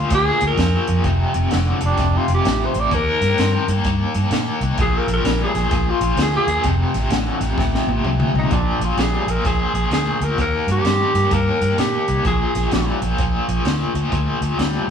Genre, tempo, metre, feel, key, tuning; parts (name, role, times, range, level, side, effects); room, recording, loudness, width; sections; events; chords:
electric blues shuffle; 129 BPM; 4/4; swing 64% on 8ths; Bb mixolydian; A4 = 441 Hz
growling tenor saxophone; melody; 0.0-13.0 s; D4 to D5; -21 LUFS; equal
overdriven semi-hollow guitar; riff; 0.0-14.9 s; F2 to C4; -22 LUFS; left 3 dB; tremolo
vintage muted fingered electric bass; bass; 0.0-14.9 s; F1 to Bb2; -21 LUFS; right 1 dB
compact cocktail drum kit; drums; 0.1-14.7 s; hi-hat, kick drum, snare drum, toms; -24 LUFS; equal
moderate studio reverb, RT60 0.8 s; band playing live in one room, small room ambience; -16 LUFS; side -7 dB against mid
0.0-8.5 A section; 8.5-14.9 B section
tenor saxophone solo 0.0-8.5; drum fill 7.6-8.5
0.0 Bb; 1.1 F; 2.9 Eb; 4.8 Bb7(no3); 6.6 F; 8.5 Bb7; 10.4 Eb; 12.2 Bb7